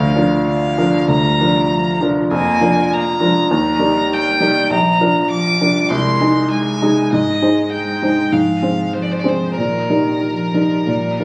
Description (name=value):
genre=quick classical-period movement for piano trio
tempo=99 BPM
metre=4/4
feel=rubato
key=Eb major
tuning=A4 = 439 Hz
part: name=rich violin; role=melody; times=0.0-11.2 s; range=Bb4 to D6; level=-22 LUFS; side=equal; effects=none
part: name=rich cello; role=second line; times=0.0-11.2 s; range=D3 to Bb3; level=-26 LUFS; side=equal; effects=none
part: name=warm grand piano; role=accompaniment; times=0.0-11.2 s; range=Bb1 to C5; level=-18 LUFS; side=equal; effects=none
room=wet recital hall reverb, RT60 1.4 s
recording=recorded on a phone in the room, studio ambience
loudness=-16 LUFS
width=mono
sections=0.0-11.2 A section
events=none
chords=0.0 Bb/D; 2.3 Bb7/F; 3.5 Eb; 4.7 Bb; 5.9 Ab/C; 7.1 Ab; 8.3 Fm/Ab; 9.6 Eb/Bb